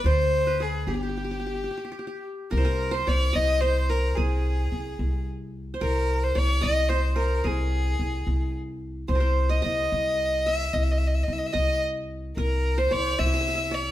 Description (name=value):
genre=Arabic maqam ensemble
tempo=73 BPM (dotted quarters)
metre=6/8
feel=straight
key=C maqam saba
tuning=A4 = 440 Hz
part: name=rich violin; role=melody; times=0.0-13.9 s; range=G4 to E5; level=-27 LUFS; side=left 1 dB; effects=none
part: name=qanun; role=second line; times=0.0-13.9 s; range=G4 to E5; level=-32 LUFS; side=right 3 dB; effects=none
part: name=upright bass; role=bass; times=0.0-13.9 s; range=G1 to D2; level=-25 LUFS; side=equal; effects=none
room=light reverb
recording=band playing live in one room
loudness=-23 LUFS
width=side -13 dB against mid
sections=0.0-2.5 A section; 2.5-13.9 B section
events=break 1.7-2.5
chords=none